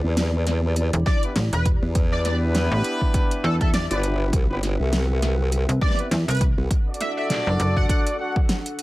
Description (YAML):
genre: glitch hop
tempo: 101 BPM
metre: 4/4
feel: swing 57% on 16ths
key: E minor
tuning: A4 = 440 Hz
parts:
  - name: dark analog pad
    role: sustained chords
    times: 0.0-8.8 s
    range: C4 to F#5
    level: -33 LUFS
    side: left 1 dB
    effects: chorus, vintage 12-bit sampler grit, sidechain pumping
  - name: formant-sweep wobble bass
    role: bass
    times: 0.0-6.7 s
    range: G1 to E2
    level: -22 LUFS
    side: equal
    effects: chorus, tube saturation
  - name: pop drum kit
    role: drums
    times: 0.2-8.8 s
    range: hi-hat, snare drum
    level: -27 LUFS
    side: equal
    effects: overdrive
  - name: slap-like FM bass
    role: bass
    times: 0.9-7.9 s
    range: E1 to E2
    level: -22 LUFS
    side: equal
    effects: none
  - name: sync lead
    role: melody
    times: 1.1-8.0 s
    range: A4 to F#5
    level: -29 LUFS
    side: equal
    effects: ensemble chorus, tape echo
  - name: electronic kick drum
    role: drums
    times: 1.1-8.5 s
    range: none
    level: -21 LUFS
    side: equal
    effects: overdrive
  - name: warm horn section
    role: stabs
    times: 1.2-8.4 s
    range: B3 to F#5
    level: -27 LUFS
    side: equal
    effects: sidechain pumping, tape echo
room: little or no reverb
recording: vinyl crackle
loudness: -19 LUFS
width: side -18 dB against mid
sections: 0.0-8.8 A section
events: break 8.5-8.8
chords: 0.0 Em7; 4.3 Cmaj7; 6.7 D